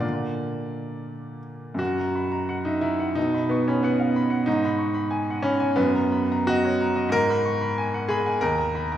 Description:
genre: classical, romantic character piece for solo piano.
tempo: 64-95 BPM.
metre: 2/4.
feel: rubato.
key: Eb minor.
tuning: A4 = 441 Hz.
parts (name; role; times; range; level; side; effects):
clear baby grand piano; solo; 0.0-9.0 s; Eb2 to Db6; -22 LUFS; equal; none.
room: wet recital hall reverb, RT60 1.7 s.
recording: heard from further back in the room.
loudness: -21 LUFS.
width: side -11 dB against mid.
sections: 0.0-1.8 A section; 1.8-9.0 B section.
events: none.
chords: 0.0 Bb; 1.8 Gb7; 3.2 B5; 4.5 Abm; 5.8 Ebm/Gb; 7.1 Abm; 8.4 Eb5.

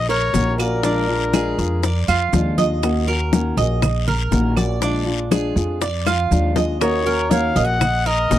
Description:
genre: latin, Cuban son and guajira.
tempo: 120 BPM.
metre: 4/4.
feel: straight.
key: Eb minor.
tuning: A4 = 440 Hz.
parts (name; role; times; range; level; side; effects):
breathy trumpet; melody; 0.0-2.1, 6.8-8.4 s; Bb4 to Gb5; -22 LUFS; left 3 dB; none.
nylon-string guitar; second line; 0.0-2.0, 6.8-8.4 s; F4 to Eb5; -27 LUFS; right 6 dB; slapback echo.
Cuban tres; arpeggios; 0.0-8.4 s; D4 to Eb5; -24 LUFS; right 6 dB; none.
upright bass; bass; 0.0-8.4 s; Bb1 to F2; -21 LUFS; equal; none.
bongos; percussion; 0.1-8.4 s; none; -24 LUFS; left 9 dB; none.
congas; percussion; 0.1-8.4 s; none; -24 LUFS; left 1 dB; none.
fingerpicked steel-string acoustic guitar; accompaniment; 0.3-8.4 s; Eb3 to Gb4; -23 LUFS; left 3 dB; none.
guiro; percussion; 0.3-8.4 s; none; -32 LUFS; left 11 dB; none.
maracas; percussion; 0.3-8.4 s; none; -34 LUFS; right 14 dB; none.
claves; percussion; 0.6-8.1 s; none; -30 LUFS; right 10 dB; none.
room: light reverb.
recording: dry, close 1970s-style studio recording.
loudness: -16 LUFS.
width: side -12 dB against mid.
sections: 0.0-8.4 A section.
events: drum fill 6.1-6.8.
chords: 0.0 Ebm7; 0.8 Bb7; 2.8 Ebm7; 4.8 Bb7; 6.8 Ebm7.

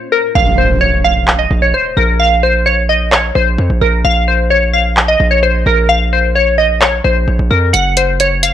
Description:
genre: hip hop, trap.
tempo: 130 BPM.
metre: 4/4.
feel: half-time.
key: Bb minor.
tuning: A4 = 439 Hz.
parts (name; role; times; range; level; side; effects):
glassy wavetable pluck; melody; 0.0-8.5 s; Bb4 to Gb5; -12 LUFS; left 1 dB; chorus.
hard-hitting 808-style bass; bass; 0.4-8.5 s; Gb1 to F2; -14 LUFS; equal; none.
impact; sound effects; 0.4-2.2 s; none; -20 LUFS; equal; none.
house drum kit; drums; 1.3-8.5 s; handclaps, hi-hat; -13 LUFS; equal; none.
room: digital ambience.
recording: none.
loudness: -10 LUFS.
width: side -10 dB against mid.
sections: 0.4-8.5 A section.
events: hi-hats muted 0.4-7.7; impact 0.4-2.2.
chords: 0.4 Bb5; 7.7 Gb5.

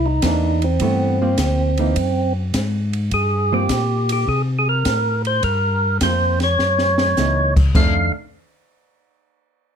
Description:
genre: soul jazz organ trio.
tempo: 104 BPM.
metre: 4/4.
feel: swing 68% on 8ths.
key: unclear.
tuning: A4 = 439 Hz.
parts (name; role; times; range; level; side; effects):
percussive tonewheel organ; melody; 0.0-8.1 s; C4 to F5; -20 LUFS; right 1 dB; slow rotary speaker, overdrive.
mellow tonewheel organ; bass; 0.0-8.1 s; C2 to C3; -20 LUFS; left 1 dB; overdrive, chorus vibrato, slow rotary speaker.
hollow-body jazz guitar; accompaniment; 0.2-8.1 s; Eb3 to Eb4; -24 LUFS; right 2 dB; none.
open jazz drum kit; drums; 0.2-7.9 s; crash cymbal, hi-hat, kick drum, ride cymbal, snare drum; -22 LUFS; equal; none.
room: light reverb.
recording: none.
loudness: -16 LUFS.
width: side -7 dB against mid.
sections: 0.0-7.8 A section; 7.8-9.8 B section.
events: drum fill 6.6-7.2.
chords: 0.0 C9; 0.8 Gm11; 2.0 Gbsus2; 3.1 Gm7; 4.3 Ammaj7; 5.4 Gm7; 6.6 Gb6; 7.8 F6.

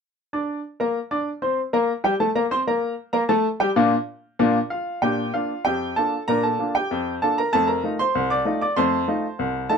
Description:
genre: ragtime piano.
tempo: 96 BPM.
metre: 2/4.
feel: straight.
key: Bb major.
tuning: A4 = 440 Hz.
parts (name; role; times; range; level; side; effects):
clear upright piano; solo; 0.3-9.8 s; C2 to D6; -20 LUFS; equal; none.
room: moderate small room reverb, RT60 0.5 s.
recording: close, detailed microphones.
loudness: -20 LUFS.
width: side -6 dB against mid.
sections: 0.0-5.0 A section; 5.0-9.8 B section.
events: none.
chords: 0.0 Bb; 7.5 F7.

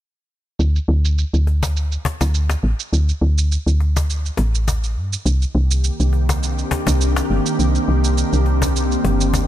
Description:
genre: organic downtempo.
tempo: 103 BPM.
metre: 4/4.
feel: swing 54% on 16ths.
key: unclear.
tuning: A4 = 440 Hz.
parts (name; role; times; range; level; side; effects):
woody FM bass; bass; 0.6-9.5 s; G1 to G2; -17 LUFS; equal; none.
shaker; drums; 0.6-9.5 s; none; -29 LUFS; right 8 dB; low-pass filter on perc.
cajon; percussion; 1.5-9.5 s; none; -25 LUFS; left 2 dB; none.
ethereal airy pad; sustained chords; 5.7-9.5 s; Eb3 to G4; -21 LUFS; equal; ensemble chorus, built-in reverb.
room: digital ambience.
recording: none.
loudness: -16 LUFS.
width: side -12 dB against mid.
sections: 0.6-9.5 A section.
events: none.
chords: 0.6 D5; 5.3 Cm9.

